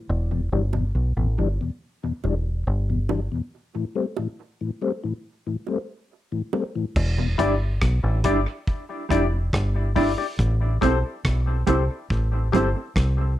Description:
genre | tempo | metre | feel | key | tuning
dub reggae | 70 BPM | 4/4 | straight | A minor | A4 = 440 Hz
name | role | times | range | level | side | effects
deep dub fingered electric bass | bass | 0.1-13.4 s | E1 to C2 | -22 LUFS | equal | tube saturation
mellow tonewheel organ | accompaniment | 0.3-7.3 s | E2 to D4 | -26 LUFS | left 4 dB | chorus vibrato, slow rotary speaker, cassette tape
bongos | percussion | 0.7-6.7 s | none | -33 LUFS | right 8 dB | dub echo
deep reggae drum kit | drums | 7.0-13.2 s | crash cymbal, hi-hat, kick drum, rim click | -27 LUFS | equal | cassette tape
mellow electric guitar | accompaniment | 7.4-12.8 s | G3 to E4 | -27 LUFS | right 7 dB | tremolo, cassette tape, dub echo
percussive organ stab | stabs | 7.4-12.7 s | E4 to D5 | -27 LUFS | left 6 dB | chorus, cassette tape, dub echo
room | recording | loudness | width
moderate studio reverb, RT60 0.6 s | home recording on cassette | -22 LUFS | side -13 dB against mid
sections
0.0-7.0 A section; 7.0-13.4 B section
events
break 0.0-7.0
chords
0.1 Em7; 3.5 Am7; 7.0 Em7; 10.4 Am7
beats
| 0.09 0.95 1.80 2.67 | 3.52 4.38 5.24 6.10 | 6.96 7.82 8.68 9.53 | 10.39 11.25 12.11 12.96

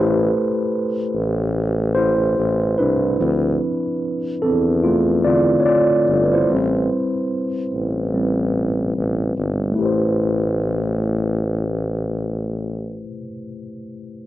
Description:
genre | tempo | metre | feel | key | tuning
lo-fi hip hop | 73 BPM | 4/4 | swing 63% on 16ths | A minor | A4 = 440 Hz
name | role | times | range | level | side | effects
mellow tine electric piano | accompaniment | 0.0-14.3 s | D3 to D5 | -19 LUFS | equal | slow stereo tremolo, low-pass filter, plate reverb
warm tuba | bass | 0.0-13.1 s | G1 to E2 | -21 LUFS | equal | none
room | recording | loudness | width
moderate small room reverb, RT60 0.5 s | none | -17 LUFS | side -14 dB against mid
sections
0.0-3.2 A section; 3.2-9.8 B section; 9.8-13.1 C section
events
tine electric piano solo 3.2-9.8; filter sweep on tine electric piano 3.2-9.8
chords
0.0 Am9; 3.2 Dm9; 6.5 Am7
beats
0.74 1.56 2.38 | 3.20 4.03 4.85 5.67 | 6.49 7.31 8.13 8.96 | 9.78 10.60 11.42 12.24

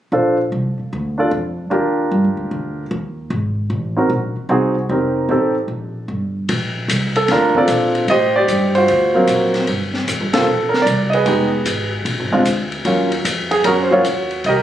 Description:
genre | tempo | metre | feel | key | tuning
jazz piano trio | 151 BPM | 4/4 | swing 67% on 8ths | Bb major | A4 = 440 Hz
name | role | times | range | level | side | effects
warm baby grand piano | melody | 0.1-14.6 s | F#3 to E#5 | -16 LUFS | right 1 dB | plate reverb
upright bass | bass | 0.1-14.6 s | F1 to Bb2 | -22 LUFS | equal | none
open jazz drum kit | drums | 6.5-14.6 s | hi-hat, kick drum, ride cymbal, snare drum | -22 LUFS | left 3 dB | none
room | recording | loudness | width
light reverb | recorded on a phone in the room, club reverb, compression | -15 LUFS | side -11 dB against mid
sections
0.1-6.5 A section; 6.5-14.6 B section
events
band accent 10.3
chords
0.1 Bbmaj7; 1.7 Ebmaj7; 3.3 Ab9; 4.9 F9sus4; 6.5 Bbmaj7; 8.1 F13 (rootless); 8.9 D7alt; 9.7 Gmadd9; 11.3 Fm7b5; 12.1 Bb7; 12.9 Ebm9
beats
| 0.12 0.52 0.92 1.31 | 1.71 2.11 2.51 2.91 | 3.31 3.70 4.10 4.50 | 4.90 5.29 5.69 6.09 | 6.49 6.89 7.28 7.68 | 8.08 8.48 8.88 9.27 | 9.67 10.07 10.47 10.86 | 11.26 11.66 12.06 12.46 | 12.85 13.25 13.65 14.04 | 14.44

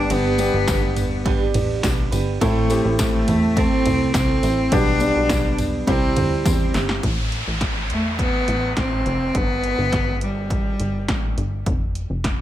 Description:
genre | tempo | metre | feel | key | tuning
piano-driven pop | 104 BPM | 4/4 | straight | unclear | A4 = 444 Hz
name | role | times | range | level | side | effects
bright cello | melody | 0.0-11.3 s | G3 to D4 | -23 LUFS | equal | ping-pong delay
warm grand piano | accompaniment | 0.0-7.1 s | G2 to A4 | -24 LUFS | left 2 dB | none
fingerpicked steel-string acoustic guitar | riff | 0.0-7.0 s | G2 to D5 | -26 LUFS | right 9 dB | none
plucky analog bass | bass | 0.0-12.4 s | F1 to E2 | -24 LUFS | equal | none
punchy analog drum machine | drums | 0.1-12.4 s | hi-hat, kick drum, ride cymbal, snare drum, toms | -23 LUFS | equal | none
tambourine | percussion | 0.1-6.9 s | none | -36 LUFS | left 6 dB | none
downlifter | sound effects | 7.0-11.7 s | none | -30 LUFS | equal | none
room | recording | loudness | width
light reverb | none | -18 LUFS | side -12 dB against mid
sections
0.0-7.0 A section; 7.0-12.4 B section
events
drum fill 6.5-7.0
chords
0.0 G; 2.4 Am; 4.7 G/B; 5.9 C; 7.0 Am; 9.3 G; 11.7 F5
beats
| 0.10 0.68 1.26 1.83 | 2.41 2.99 3.57 4.14 | 4.72 5.30 5.88 6.46 | 7.03 7.61 8.19 8.77 | 9.35 9.93 10.50 11.08 | 11.66 12.24

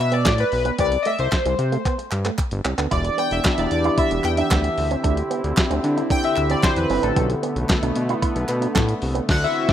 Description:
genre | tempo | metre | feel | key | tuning
early-eighties boogie funk | 113 BPM | 4/4 | straight | unclear | A4 = 439 Hz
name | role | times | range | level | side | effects
chorused polysynth | accompaniment | 0.0-9.7 s | A4 to G5 | -22 LUFS | left 2 dB | none
fat analog bass | bass | 0.0-9.7 s | E1 to D3 | -23 LUFS | equal | none
electric guitar with an envelope filter | riff | 0.1-9.2 s | G3 to E4 | -28 LUFS | right 6 dB | wide subtle chorus
clean 12-bit digital drum machine | drums | 0.1-9.7 s | crash cymbal, handclaps, hi-hat, kick drum, snare drum | -22 LUFS | equal | none
group handclap | percussion | 0.3-8.9 s | none | -34 LUFS | right 4 dB | none
chorused pulse-width pad | sustained chords | 2.9-9.7 s | D3 to G4 | -25 LUFS | left 1 dB | none
room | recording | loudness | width
little or no reverb | rough home demo mix | -18 LUFS | side -10 dB against mid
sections
0.0-9.7 A section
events
analog polysynth solo 0.0-9.7; drum fill 1.9-2.9; band accent 9.3-9.7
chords
0.0 Bm7; 0.8 C5; 2.9 Em7; 4.8 D9sus4; 7.2 Bm7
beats
0.26 | 0.79 1.32 1.85 2.39 | 2.92 3.45 3.98 4.51 | 5.04 5.57 6.10 6.63 | 7.17 7.70 8.23 8.76 | 9.29

